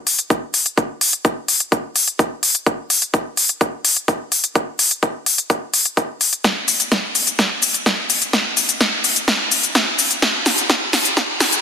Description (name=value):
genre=house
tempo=127 BPM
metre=4/4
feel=straight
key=none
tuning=none
part: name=big-room dance drum kit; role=drums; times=0.1-11.6 s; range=hi-hat, shaker, snare drum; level=-15 LUFS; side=left 1 dB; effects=overdrive, high-pass filter on hats, high-pass filter on snare, high-pass filter on perc
part: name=electronic kick drum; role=drums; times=0.3-11.3 s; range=none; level=-19 LUFS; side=equal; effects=high-pass filter on kick, high-pass filter on room
room=moderate lush hall reverb, RT60 1.9 s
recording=dense, heavily limited modern master, high-pass filter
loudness=-15 LUFS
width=side -7 dB against mid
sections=0.0-11.6 A section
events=build-up 0.0-11.6; drum fill 6.4-11.6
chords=none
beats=0.30 | 0.78 1.25 1.72 2.19 | 2.67 3.14 3.61 4.08 | 4.55 5.03 5.50 5.97 | 6.45 6.92 7.39 7.86 | 8.33 8.81 9.28 9.75 | 10.22 10.70 11.17